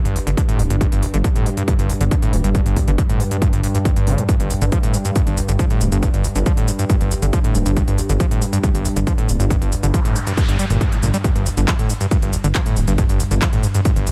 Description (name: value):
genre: driving peak-time techno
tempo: 138 BPM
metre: 4/4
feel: straight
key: unclear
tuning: A4 = 438 Hz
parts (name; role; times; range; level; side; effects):
- analog drone; drone; 0.0-14.1 s; G2; -28 LUFS; equal; chorus, sidechain pumping
- screaming distorted acid line; riff; 0.1-14.1 s; G1 to G3; -24 LUFS; equal; distortion, chorus, sidechain pumping, delay
- dark detuned saw bass; bass; 0.1-14.0 s; D1 to G1; -22 LUFS; equal; sidechain pumping
- techno drum kit; drums; 0.1-14.1 s; handclaps, hi-hat, shaker; -30 LUFS; equal; none
- electronic kick drum; drums; 0.4-13.9 s; none; -20 LUFS; equal; none
- noise sweep; sound effects; 9.8-11.2 s; none; -35 LUFS; equal; none
room: little or no reverb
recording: none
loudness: -18 LUFS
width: mono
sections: 0.0-14.1 A section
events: noise sweep 9.8-11.2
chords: 0.0 G5